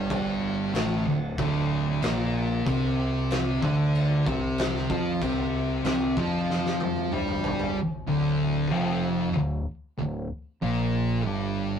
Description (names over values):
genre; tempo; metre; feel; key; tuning
stoner and doom metal; 94 BPM; 4/4; straight; D minor from 7.8 s; A4 = 440 Hz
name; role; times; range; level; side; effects
thick fuzz guitar; riff; 0.0-11.8 s; D2 to G4; -29 LUFS; left 4 dB; distortion
thick fuzz guitar; riff; 0.0-11.8 s; D2 to G4; -28 LUFS; right 5 dB; distortion
growling fingered electric bass; bass; 0.0-11.8 s; D1 to G2; -31 LUFS; left 1 dB; overdrive
oversized low-tuned drum kit; drums; 0.1-7.7 s; crash cymbal, kick drum, snare drum, toms; -31 LUFS; left 2 dB; none
room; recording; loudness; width
light reverb; rough rehearsal-room recording, warm saturation; -24 LUFS; side -8 dB against mid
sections
0.0-7.8 A section; 7.8-11.8 B section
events
drum fill 6.5-7.8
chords
0.0 D5; 2.7 C5; 7.8 Dm